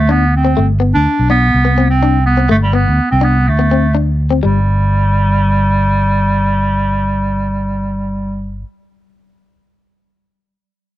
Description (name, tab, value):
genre	highlife guitar band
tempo	124 BPM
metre	4/4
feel	straight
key	G major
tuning	A4 = 440 Hz
part	clear clarinet	melody	0.0-8.6 s	G3 to D4	-15 LUFS	right 1 dB	none
part	fingered electric bass	bass	0.0-8.6 s	G1 to D2	-14 LUFS	equal	none
part	direct-recorded clean electric guitar	accompaniment	0.1-4.6 s	G3 to D4	-18 LUFS	left 7 dB	lush chorus
room	small room ambience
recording	dry, close 1970s-style studio recording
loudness	-11 LUFS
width	side -14 dB against mid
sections	0.0-4.4 A section; 4.4-8.3 B section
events	none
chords	0.0 Bm7/D; 0.6 Gadd9; 1.5 Csus2; 2.5 Gadd9; 3.5 D5; 4.4 N.C.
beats	0.09 | 0.57 1.06 1.54 2.02 | 2.51 2.99 3.47 3.96 | 4.44 4.92 5.41 5.89 | 6.37 6.86 7.34 7.82